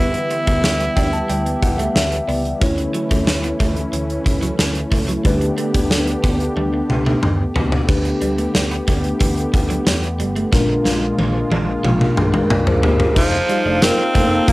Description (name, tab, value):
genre	1980s-style pop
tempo	91 BPM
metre	4/4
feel	straight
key	unclear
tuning	A4 = 440 Hz
part	raspy tenor saxophone	melody	0.0-1.9, 13.2-14.5 s	F3 to E4	-20 LUFS	right 1 dB	cassette tape, tape echo
part	tine electric piano	accompaniment	0.0-14.5 s	Bb2 to A5	-23 LUFS	left 1 dB	medium stereo tremolo
part	warm analog pad	sustained chords	0.0-14.5 s	D3 to F5	-24 LUFS	equal	chorus
part	electric guitar at the edge of break-up	riff	0.0-14.5 s	E3 to D4	-27 LUFS	right 2 dB	lush chorus, tape echo
part	vintage muted picked electric bass	bass	0.0-14.5 s	F1 to E2	-24 LUFS	equal	none
part	gated 80s drum kit	drums	0.1-14.5 s	crash cymbal, hi-hat, kick drum, snare drum, tambourine, toms	-18 LUFS	equal	cassette tape
part	mellow synth brass	stabs	13.7-14.5 s	Bb3 to D5	-21 LUFS	left 2 dB	chorus
room	moderate studio reverb, RT60 0.5 s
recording	home recording on cassette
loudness	-15 LUFS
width	side -20 dB against mid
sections	0.0-7.9 A section; 7.9-13.2 B section; 13.2-14.5 C section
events	tine electric piano fill 0.6-2.6; drum fill 6.6-7.9, 10.5-13.2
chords	0.0 Em/D; 2.6 A/D; 5.3 Gadd9/D; 10.5 Bb7; 13.2 Ebsus2/F